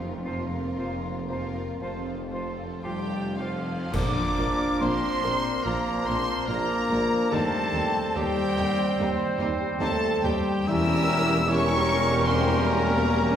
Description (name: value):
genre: classical, slow romantic movement for symphony orchestra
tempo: 50-77 BPM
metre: 4/4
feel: rubato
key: unclear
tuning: A4 = 441 Hz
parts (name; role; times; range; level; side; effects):
- warm studio violin section; melody; 0.0-13.4 s; A4 to E6; -32 LUFS; left 2 dB; none
- rich studio violin section; second line; 0.0-13.4 s; D4 to Bb4; -36 LUFS; left 2 dB; none
- dark studio viola section; accompaniment; 0.0-13.4 s; F3 to C#4; -37 LUFS; right 1 dB; none
- mellow French horn section; sustained chords; 0.0-13.4 s; F3 to E4; -30 LUFS; left 2 dB; none
- concert harp; arpeggios; 0.0-13.4 s; Bb2 to C6; -36 LUFS; left 5 dB; none
- mellow tuba; bass; 0.0-13.4 s; E1 to Eb2; -34 LUFS; right 2 dB; none
- rich studio cello section; bass; 0.0-13.4 s; Eb2 to Bb2; -34 LUFS; right 1 dB; none
- rich studio double bass section; bass; 0.0-13.4 s; E1 to Eb2; -35 LUFS; right 2 dB; none
- bright clarinet; second line; 0.2-13.4 s; Bb3 to F4; -37 LUFS; left 2 dB; none
- large flute ensemble; second line; 0.3-13.4 s; F5 to E6; -35 LUFS; left 1 dB; none
- warm cor anglais; second line; 0.3-13.4 s; F4 to E5; -33 LUFS; right 2 dB; none
- mellow bassoon; accompaniment; 0.3-13.4 s; F3 to G3; -36 LUFS; right 3 dB; none
- warm trombone section; sustained chords; 3.9-13.4 s; F3 to D4; -35 LUFS; right 1 dB; none
- dark trumpet section; stabs; 3.9-13.4 s; Bb4 to C5; -34 LUFS; right 2 dB; none
- clash cymbals and concert bass drum; percussion; 3.9-5.6 s; none; -35 LUFS; equal; none
- timpani; percussion; 3.9-5.2 s; Bb2; -36 LUFS; left 1 dB; none
room: wet concert hall reverb, RT60 2.4 s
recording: heard from further back in the room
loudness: -23 LUFS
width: side -9 dB against mid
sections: 0.0-3.9 A section; 3.9-13.4 B section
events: band accent 3.9-4.8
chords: 0.0 Fsus4; 1.8 F; 3.9 Bb; 7.3 Cm/Eb; 10.7 Edim7